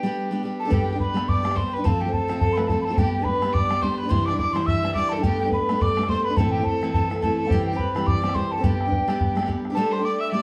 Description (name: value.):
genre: celtic folk, Celtic reel.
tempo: 212 BPM.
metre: 4/4.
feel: swing 57% on 8ths.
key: G mixolydian.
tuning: A4 = 440 Hz.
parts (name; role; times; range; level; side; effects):
mellow hollow mid whistle; melody; 0.0-10.4 s; F5 to E6; -29 LUFS; equal; plate reverb.
bright fiddle; second line; 0.0-10.4 s; G4 to E5; -33 LUFS; equal; none.
picked steel-string acoustic guitar; accompaniment; 0.0-10.4 s; A2 to G4; -28 LUFS; equal; none.
bodhran; percussion; 0.7-9.7 s; none; -27 LUFS; equal; none.
room: wet studio reverb, RT60 0.6 s.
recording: heard from further back in the room.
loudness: -23 LUFS.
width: mono.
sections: 0.7-9.8 A section.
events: none.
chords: 0.0 G; 1.9 F; 3.0 G; 4.1 Cadd9; 5.2 Gadd9; 6.4 Am; 7.5 C; 8.6 G; 9.8 Gsus2.